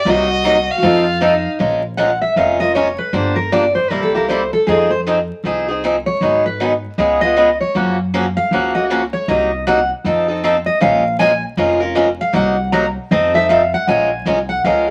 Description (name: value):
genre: acoustic string swing (jazz manouche)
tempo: 156 BPM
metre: 4/4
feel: swing 61% on 8ths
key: Bb minor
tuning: A4 = 437 Hz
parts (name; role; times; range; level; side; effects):
- warm violin; melody; 0.0-1.5 s; D5 to F5; -22 LUFS; equal; none
- picked steel-string acoustic guitar; second line; 0.1-14.9 s; Eb4 to Bb5; -19 LUFS; equal; none
- picked swing-style acoustic guitar; accompaniment; 0.1-14.9 s; C3 to Bb4; -18 LUFS; equal; none
- upright bass; bass; 0.1-14.9 s; F1 to Ab2; -25 LUFS; equal; none
room: moderate studio reverb, RT60 0.7 s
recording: vinyl crackle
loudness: -16 LUFS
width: mono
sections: 0.0-1.6 A section; 1.6-13.9 B section; 13.9-14.9 B section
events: steel-string acoustic guitar solo 1.6-14.9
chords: 0.1 Cm7b5; 0.8 F7; 1.6 Bbm7; 3.1 Gm7; 3.9 C7; 4.7 Fm7; 6.2 Abm7; 7.0 Db7; 7.7 Gbmaj7; 9.3 Cm7b5; 10.1 F7; 10.8 Bbm7; 12.3 Cm7b5; 13.1 F7; 13.9 Bbm7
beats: | 0.06 0.45 0.83 1.22 | 1.60 1.98 2.37 2.75 | 3.14 3.52 3.91 4.29 | 4.68 5.06 5.44 5.83 | 6.21 6.60 6.98 7.37 | 7.75 8.13 8.52 8.90 | 9.28 9.67 10.05 10.43 | 10.82 11.20 11.58 11.96 | 12.35 12.73 13.11 13.49 | 13.88 14.26 14.64